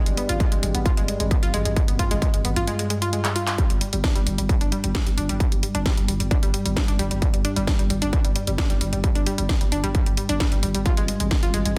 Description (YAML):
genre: driving peak-time techno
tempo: 132 BPM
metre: 4/4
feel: straight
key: unclear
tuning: A4 = 440 Hz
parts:
  - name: analog drone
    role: drone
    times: 0.0-11.8 s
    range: G2 to G3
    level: -32 LUFS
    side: equal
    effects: chorus, sidechain pumping
  - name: analog pluck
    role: riff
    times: 0.1-11.7 s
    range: G3 to F4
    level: -30 LUFS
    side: equal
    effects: chorus, sidechain pumping, digital delay
  - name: growling 808-style bass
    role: bass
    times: 0.1-11.8 s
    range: G1 to Ab1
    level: -30 LUFS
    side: equal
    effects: overdrive, sidechain pumping, low-pass filter
  - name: techno drum kit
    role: drums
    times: 0.1-11.7 s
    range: handclaps, hi-hat, snare drum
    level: -31 LUFS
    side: equal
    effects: overdrive, sidechain pumping on hats, studio reverb
  - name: electronic kick drum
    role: drums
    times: 0.4-11.4 s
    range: none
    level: -24 LUFS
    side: equal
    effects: distortion, overdrive, studio reverb
room: light reverb, digital ambience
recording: dense, heavily limited modern master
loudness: -22 LUFS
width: mono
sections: 0.0-11.8 A section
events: drum fill 3.2-3.6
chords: 0.0 N.C.; 3.6 G5; 10.9 Fmadd9/Ab (rootless)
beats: 0.40 0.86 1.31 | 1.76 2.22 2.67 3.13 | 3.58 4.04 4.49 4.95 | 5.40 5.86 6.31 6.76 | 7.22 7.67 8.13 8.58 | 9.04 9.49 9.95 10.40 | 10.86 11.31 11.77